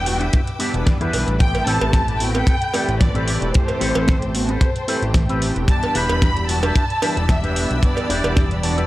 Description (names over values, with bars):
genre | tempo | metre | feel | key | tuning
nu-disco, nu disco | 112 BPM | 4/4 | swing 54% on 16ths | A minor | A4 = 440 Hz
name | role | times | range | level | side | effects
dark studio violin section | melody | 0.0-8.9 s | C5 to B5 | -25 LUFS | equal | tape echo
mellow synth brass | accompaniment | 0.0-8.8 s | E3 to C5 | -26 LUFS | right 1 dB | chorus, cassette tape, sidechain pumping
rich studio string section | sustained chords | 0.0-8.9 s | A4 to E6 | -33 LUFS | left 1 dB | sidechain pumping
fat analog bass | bass | 0.0-8.9 s | E1 to E2 | -22 LUFS | equal | tube saturation, sidechain pumping
pop drum kit | drums | 0.1-8.9 s | hi-hat, rim click, snare drum | -27 LUFS | equal | none
electric guitar with an envelope filter | riff | 0.2-8.9 s | C4 to A5 | -26 LUFS | left 1 dB | analog chorus
kick drum | drums | 0.3-8.5 s | none | -19 LUFS | equal | none
cowbell | percussion | 1.1-8.3 s | none | -26 LUFS | right 3 dB | none
room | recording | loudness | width
small room ambience | dry, gritty hardware recording, transformer saturation | -16 LUFS | side -16 dB against mid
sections
0.0-8.9 A section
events
clean electric guitar fill 8.4-8.9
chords
0.0 Em7; 1.4 Am9; 5.7 Em7